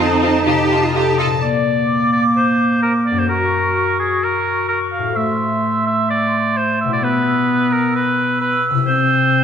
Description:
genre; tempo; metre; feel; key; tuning
cinematic; 129 BPM; 4/4; straight; unclear; A4 = 441 Hz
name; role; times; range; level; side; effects
warm symphonic violin section; melody; 0.0-1.4 s; A5; -23 LUFS; left 3 dB; none
rich symphonic violin section; second line; 0.0-1.3 s; F4; -24 LUFS; right 1 dB; none
clear symphonic viola section; accompaniment; 0.0-1.1 s; Eb4; -18 LUFS; right 4 dB; none
concert harp; arpeggios; 0.0-9.4 s; F2 to E5; -22 LUFS; left 8 dB; none
bright symphonic cello section; bass; 0.0-1.3 s; C4 to A4; -19 LUFS; right 2 dB; none
clear oboe; second line; 1.2-9.4 s; Ab4 to F5; -19 LUFS; right 2 dB; none
bright clarinet; second line; 1.4-9.4 s; A3 to Gb4; -20 LUFS; left 1 dB; none
mellow small flute group; second line; 1.4-9.4 s; C6 to E6; -23 LUFS; right 1 dB; none
room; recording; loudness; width
wet scoring stage reverb, RT60 1.5 s; none; -14 LUFS; side -8 dB against mid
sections
0.0-1.4 A section; 1.4-9.4 B section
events
none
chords
0.0 F7; 1.4 Bb; 3.3 Gb; 5.2 Am7; 7.0 Em/B; 8.9 C

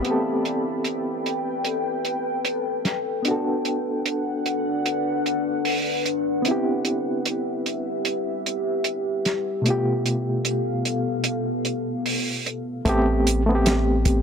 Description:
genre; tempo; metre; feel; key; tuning
trip hop; 75 BPM; 4/4; swing 60% on 16ths; A minor; A4 = 440 Hz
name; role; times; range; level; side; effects
overdriven reed electric piano; accompaniment; 0.0-14.2 s; B2 to A4; -25 LUFS; equal; tremolo, tape echo
deep dark ambient pad; sustained chords; 0.0-12.8 s; B3 to G5; -26 LUFS; left 1 dB; chorus, built-in reverb, vintage 12-bit sampler grit
soft dub sub bass; bass; 0.0, 12.9-14.2 s; A1; -23 LUFS; equal; none
warm soul drum kit; drums; 0.0-14.2 s; hi-hat, kick drum, snare drum; -24 LUFS; right 2 dB; low-pass filter on kick, low-pass filter on hats, low-pass filter on snare, low-pass filter on room
room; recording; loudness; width
light reverb, studio ambience; none; -22 LUFS; side -6 dB against mid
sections
0.1-12.9 A section; 12.9-14.2 B section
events
none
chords
0.1 Am9; 3.3 Bm7; 6.5 Cmaj7; 9.7 G9/B; 12.9 Am9

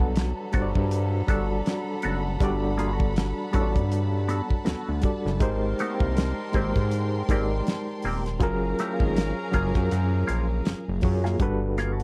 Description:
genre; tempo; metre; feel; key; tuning
R&B, neo-soul; 80 BPM; 4/4; swing 57% on 16ths; unclear; A4 = 438 Hz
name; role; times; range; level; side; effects
clean electric guitar; second line; 0.0-12.0 s; Bb3 to A4; -33 LUFS; equal; wah
overdriven reed electric piano; accompaniment; 0.0-12.0 s; F#3 to D5; -32 LUFS; equal; fast tremolo
warm studio string section; sustained chords; 0.0-11.4 s; G#4 to C6; -41 LUFS; equal; none
warm horn section; stabs; 0.0-11.0 s; E#3 to Bb4; -39 LUFS; equal; none
fat analog bass; bass; 0.0-12.0 s; Eb1 to Ab2; -29 LUFS; equal; none
damped 70s drum kit; drums; 0.0-12.0 s; hi-hat, kick drum, snare drum; -28 LUFS; equal; none
room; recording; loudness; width
little or no reverb; dark, warm production, vinyl crackle, lossy compression artefacts; -26 LUFS; mono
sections
0.0-11.4 A section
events
none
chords
0.0 Gmaj9; 5.4 Abmaj9; 8.4 F#maj9; 11.4 Gmaj9

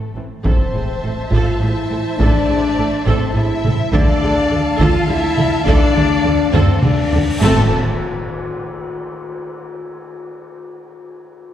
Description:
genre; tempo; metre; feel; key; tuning
cinematic, epic orchestral film score; 104 BPM; 3/4; straight; A harmonic minor; A4 = 440 Hz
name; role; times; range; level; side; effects
warm symphonic violin section; melody; 0.0-7.7 s; A4 to A5; -27 LUFS; left 2 dB; none
warm symphonic violin section; second line; 0.0-7.7 s; A3 to A5; -26 LUFS; left 2 dB; none
mellow French horn section; sustained chords; 0.0-7.6 s; A3 to F4; -19 LUFS; left 3 dB; none
warm symphonic viola section; accompaniment; 0.2-7.7 s; E3 to C5; -26 LUFS; right 2 dB; none
rich symphonic cello section; bass; 0.2-7.7 s; A2 to D3; -22 LUFS; right 1 dB; none
rich symphonic double bass section; bass; 0.2-7.7 s; A1 to D2; -22 LUFS; right 2 dB; none
impact and cymbal swell; sound effects; 0.4-2.2, 7.0-9.2 s; none; -28 LUFS; equal; none
taiko ensemble; drums; 0.5-7.4 s; none; -19 LUFS; equal; none
cymbal swell and tam-tam; percussion; 3.9-9.7 s; none; -27 LUFS; left 2 dB; none
room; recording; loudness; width
wet scoring stage reverb, RT60 1.6 s; heard from further back in the room; -14 LUFS; side -11 dB against mid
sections
0.5-7.4 A section; 7.4-9.2 B section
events
impact 0.5-2.2, 7.4-9.2; drum fill 6.5-7.4; cymbal swell 7.0-7.4; band accent 7.4-8.0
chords
0.5 Am; 3.9 Dm; 7.4 Am

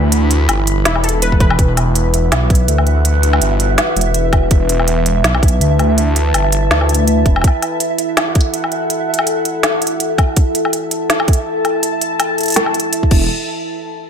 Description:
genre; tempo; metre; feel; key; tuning
half-time drum and bass; 164 BPM; 4/4; swing 56% on 16ths, half-time; unclear; A4 = 440 Hz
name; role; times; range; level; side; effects
deep dark ambient pad; sustained chords; 0.0-13.3 s; E4 to B5; -19 LUFS; left 1 dB; chorus, built-in reverb, vintage 12-bit sampler grit, sidechain pumping
phased detuned saw bass; bass; 0.0-7.4, 13.1-13.3 s; E1 to D2; -14 LUFS; equal; phaser
organic electronic drum kit; drums; 0.1-13.2 s; crash cymbal, hi-hat, snare drum, woodblock; -18 LUFS; equal; none
warbly dusty pluck; arpeggios; 0.9-1.6 s; E4 to B4; -22 LUFS; left 4 dB; chorus, ping-pong delay
electronic kick drum; drums; 1.3-13.2 s; none; -12 LUFS; equal; none
pulsing gated texture; texture; 1.6-13.3 s; E5; -24 LUFS; right 8 dB; chorus, built-in reverb
room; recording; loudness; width
light reverb; none; -12 LUFS; side -7 dB against mid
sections
0.0-1.6 A section; 1.6-13.3 B section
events
drop 0.0-1.6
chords
0.0 Em; 1.6 Esus2; 13.3 N.C.

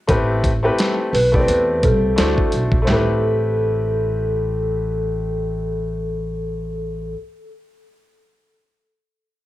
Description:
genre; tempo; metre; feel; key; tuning
hip hop, jazz-hop; 86 BPM; 4/4; swing 58% on 16ths; A minor; A4 = 439 Hz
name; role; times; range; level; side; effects
bright upright piano; accompaniment; 0.1-7.2 s; A3 to D5; -22 LUFS; left 1 dB; cassette tape
upright bass; bass; 0.1-7.1 s; A1 to E2; -22 LUFS; equal; none
dusty soul sampler-style drum kit; drums; 0.1-3.1 s; handclaps, hi-hat, kick drum, snare drum, toms; -20 LUFS; equal; cassette tape
vibraphone with soft mallets; melody; 1.1-7.1 s; A4 to B4; -22 LUFS; equal; cassette tape, analog delay
room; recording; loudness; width
light reverb; home recording on cassette; -17 LUFS; side -15 dB against mid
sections
0.0-2.9 A section; 2.9-5.7 B section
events
none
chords
0.1 Am9; 2.2 D9; 2.9 Am9

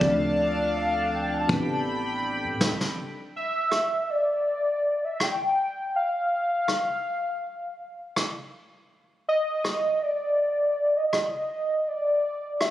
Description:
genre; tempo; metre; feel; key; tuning
contemporary R&B; 81 BPM; 4/4; swing 54% on 16ths; A minor; A4 = 440 Hz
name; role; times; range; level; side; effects
warm velvety synth lead; melody; 0.0-12.7 s; D5 to A5; -24 LUFS; equal; chorus, phaser, digital delay
felt-muted upright piano; accompaniment; 0.0-3.0 s; E3 to G4; -29 LUFS; equal; none
chorused pulse-width pad; sustained chords; 0.0-3.0 s; D4 to B5; -30 LUFS; equal; none
warm 808-style bass; bass; 0.0-3.0 s; A1 to A2; -36 LUFS; equal; none
vintage brush drum kit; drums; 0.0-12.7 s; kick drum, rim click, snare drum; -27 LUFS; equal; none
room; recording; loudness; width
light reverb, small room ambience; recorded on a phone in the room, studio reverb, compression; -24 LUFS; side -13 dB against mid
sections
0.0-3.0 A section; 3.0-12.7 B section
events
drum fill 0.0-3.0; kick muted 3.0-12.7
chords
0.0 Dm7; 1.5 Am11; 3.0 N.C.

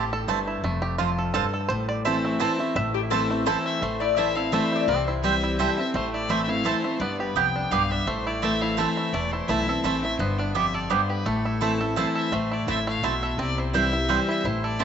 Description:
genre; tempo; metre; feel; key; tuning
bluegrass; 170 BPM; 3/4; swing 54% on 8ths; A minor; A4 = 440 Hz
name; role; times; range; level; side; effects
bluegrass banjo; melody; 0.0-14.8 s; E3 to E5; -30 LUFS; right 3 dB; tape echo
picked steel-string acoustic guitar; accompaniment; 0.0-14.8 s; E2 to E4; -26 LUFS; left 1 dB; none
mandolin; stabs; 0.0-14.8 s; B3 to A5; -29 LUFS; right 8 dB; none
upright bass; bass; 0.0-14.8 s; E1 to C2; -33 LUFS; left 1 dB; none
lap resonator guitar; second line; 2.9-5.5 s; G4 to E5; -27 LUFS; left 11 dB; none
clear fiddle; melody; 3.7-14.8 s; A4 to G5; -31 LUFS; left 3 dB; tape echo
room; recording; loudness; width
moderate plate reverb, RT60 2.7 s; 1960s-style stereo with parts hard left and right, nothing above 7.9 kHz; -22 LUFS; side -8 dB against mid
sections
0.0-3.8 A section; 3.8-12.3 B section; 12.3-14.8 B section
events
five-string banjo solo 0.0-3.8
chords
0.0 Am; 0.6 F; 1.7 Am; 4.9 C; 5.9 Am; 7.0 G; 8.1 Am; 10.2 G; 11.3 Am; 13.4 C

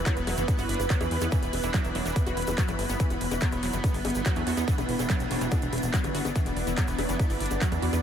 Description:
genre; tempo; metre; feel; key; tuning
psychedelic trance; 143 BPM; 4/4; straight; E minor; A4 = 440 Hz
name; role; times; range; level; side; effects
swarming drone; sustained chords; 0.0-8.0 s; B3 to B4; -33 LUFS; equal; built-in reverb, sidechain pumping
wide unison pluck; riff; 0.0-8.0 s; E3 to F#4; -34 LUFS; moving between left 5 dB and right 6 dB; auto-pan, vintage 12-bit sampler grit, sidechain pumping, ping-pong delay
granular cloud pad; texture; 0.0-8.0 s; E4 to B5; -35 LUFS; right 2 dB; built-in reverb, analog chorus, sidechain pumping
big-room dance drum kit; drums; 0.1-8.0 s; bongos, handclaps, hi-hat; -35 LUFS; left 2 dB; overdrive
electronic kick drum; drums; 0.1-7.7 s; none; -26 LUFS; equal; none
tube shaker; percussion; 0.1-8.0 s; none; -43 LUFS; left 2 dB; none
metallic wobble bass; second line; 0.2-7.6 s; G3 to D4; -42 LUFS; right 1 dB; none
plucky analog bass; bass; 0.2-8.0 s; E1 to E2; -31 LUFS; equal; none
room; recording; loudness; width
moderate huge ambient reverb, RT60 7.3 s; dreamy mix soaked in reverb; -24 LUFS; side -9 dB against mid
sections
0.0-8.0 A section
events
none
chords
0.0 E5

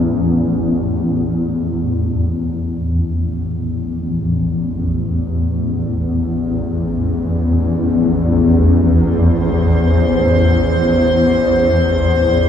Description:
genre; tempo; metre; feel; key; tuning
dark ambient drone; free time; none; none; A minor; A4 = 444 Hz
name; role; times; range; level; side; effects
swarming drone; drone; 0.0-12.5 s; A1 to E2; -14 LUFS; left 1 dB; built-in reverb
icy glass pad; texture; 9.3-12.5 s; C5; -17 LUFS; equal; chorus, built-in reverb
room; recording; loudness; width
wet huge ambient reverb, RT60 8.7 s; small room reverb; -14 LUFS; side -8 dB against mid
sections
0.0-1.6 A section; 1.6-12.5 B section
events
filter sweep on synth drone 1.6-12.5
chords
0.0 A5

